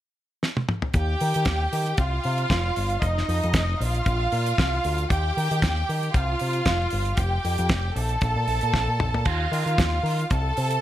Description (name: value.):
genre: disco.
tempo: 115 BPM.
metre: 4/4.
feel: swing 56% on 16ths.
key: unclear.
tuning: A4 = 441 Hz.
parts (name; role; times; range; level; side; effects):
damped 70s drum kit; drums; 0.4-10.8 s; crash cymbal, hi-hat, kick drum, snare drum, toms; -26 LUFS; equal; none.
picked electric bass with an envelope filter; bass; 0.9-10.8 s; F1 to Eb3; -25 LUFS; equal; none.
rich studio violin section; second line; 1.0-10.8 s; Eb4 to A5; -26 LUFS; right 1 dB; none.
room: light reverb, small room ambience.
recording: none.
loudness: -22 LUFS.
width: side -13 dB against mid.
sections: 0.9-10.8 A section.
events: drum fill 0.4-0.9, 8.7-9.3.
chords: 0.0 N.C.; 0.9 Eb; 2.0 Csus4; 3.0 Ebsus2/F; 3.8 Bbadd9; 5.1 Eb; 6.1 Csus4; 7.2 Fsus2; 8.0 N.C.; 9.3 Ebsus2; 10.3 N.C..